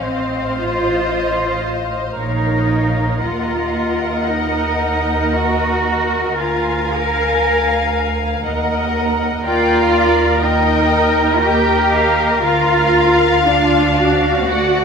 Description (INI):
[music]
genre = classical, slow romantic movement for string orchestra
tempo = 50-62 BPM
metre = 3/4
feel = rubato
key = Bb major from 9.4 s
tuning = A4 = 440 Hz
[part]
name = muted studio violin section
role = melody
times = 0.0-14.8 s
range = F5 to Ab5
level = -24 LUFS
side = left 7 dB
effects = none
[part]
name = muted studio violin section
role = second line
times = 0.0-14.8 s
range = Db5 to F5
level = -22 LUFS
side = left 4 dB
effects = none
[part]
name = muted studio viola section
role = accompaniment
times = 0.0-14.8 s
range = F4 to C5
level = -19 LUFS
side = right 1 dB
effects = none
[part]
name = muted studio double bass section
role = bass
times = 0.0-14.8 s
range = A1 to Eb2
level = -21 LUFS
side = right 2 dB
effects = none
[part]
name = muted symphonic cello section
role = bass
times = 0.0-14.8 s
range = A3 to Bb4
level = -18 LUFS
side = right 2 dB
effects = none
[sound]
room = wet concert hall reverb, RT60 1.8 s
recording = minimal, uncompressed stereo recording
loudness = -14 LUFS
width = side -6 dB against mid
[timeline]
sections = 0.0-14.8 A section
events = none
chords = 0.0 F7/A; 2.2 Bbm; 3.2 Ebm; 6.4 Bb7/D; 8.5 Ebm; 9.4 Ebmaj7; 12.4 Bb/D